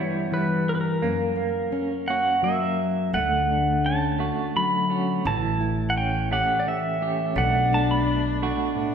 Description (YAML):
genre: acoustic folk-pop ballad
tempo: 85 BPM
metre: 3/4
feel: straight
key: unclear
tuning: A4 = 440 Hz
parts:
  - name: pedal steel guitar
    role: melody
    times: 0.0-8.9 s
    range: A#4 to B5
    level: -25 LUFS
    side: right 2 dB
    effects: none
  - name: nylon-string guitar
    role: accompaniment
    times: 0.0-8.9 s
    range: F#2 to G4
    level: -28 LUFS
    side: left 4 dB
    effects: none
  - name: semi-hollow electric guitar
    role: arpeggios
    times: 0.0-8.9 s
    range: E3 to G4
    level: -28 LUFS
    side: right 4 dB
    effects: tremolo
  - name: upright bass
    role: bass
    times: 3.1-8.5 s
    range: A1 to D2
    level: -28 LUFS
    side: equal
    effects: none
  - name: warm cello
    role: second line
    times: 7.3-8.9 s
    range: C#4 to D4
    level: -28 LUFS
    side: left 2 dB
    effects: none
room: wet scoring stage reverb, RT60 1.6 s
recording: recorded in a church or concert hall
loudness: -21 LUFS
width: side -7 dB against mid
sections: 0.0-3.1 A section; 3.1-8.9 B section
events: none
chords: 0.0 Em/G; 1.0 F#; 3.1 Dmaj7; 5.3 A7; 7.4 Bm7